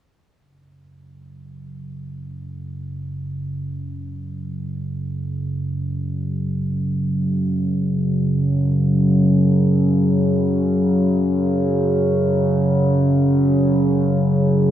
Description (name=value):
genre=ambient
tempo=free time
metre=none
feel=none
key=unclear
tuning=A4 = 440 Hz
part: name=analog drone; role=solo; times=1.3-14.7 s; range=F#2 to C#3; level=-18 LUFS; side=equal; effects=chorus, analog delay
room=wet lush hall reverb, RT60 2.9 s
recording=dreamy mix soaked in reverb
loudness=-17 LUFS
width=side -11 dB against mid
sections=0.4-14.7 A section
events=none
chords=0.4 F#5